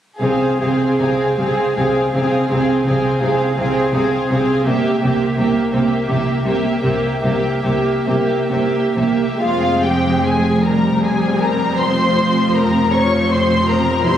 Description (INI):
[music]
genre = classical, slow romantic movement for string orchestra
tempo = 41-58 BPM (dotted quarters)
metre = 12/8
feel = rubato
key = F minor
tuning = A4 = 440 Hz
[part]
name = warm studio violin section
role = melody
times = 0.2-14.2 s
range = E5 to Db6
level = -24 LUFS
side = left 2 dB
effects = none
[part]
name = dark studio violin section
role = second line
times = 0.2-14.2 s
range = F4 to Db5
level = -20 LUFS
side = equal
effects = none
[part]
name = warm studio viola section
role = accompaniment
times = 0.2-14.2 s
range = F3 to E4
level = -19 LUFS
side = right 1 dB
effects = none
[part]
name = warm studio cello section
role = bass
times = 0.2-14.2 s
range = E2 to C3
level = -22 LUFS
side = right 1 dB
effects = none
[part]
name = warm studio double bass section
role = bass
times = 0.2-14.2 s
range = E1 to C2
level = -22 LUFS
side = right 1 dB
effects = none
[sound]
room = wet concert hall reverb, RT60 2.4 s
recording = recorded on a phone in the room, club reverb, compression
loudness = -14 LUFS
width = side -10 dB against mid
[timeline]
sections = 0.2-9.4 A section; 9.4-14.2 B section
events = none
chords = 0.2 Fm/C; 4.7 C7; 9.4 Fm; 11.8 Bbmadd9/F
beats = | 0.20 1.38 2.50 3.57 | 4.67 5.73 6.83 8.06 | 9.42 10.65 11.80 12.94 | 14.06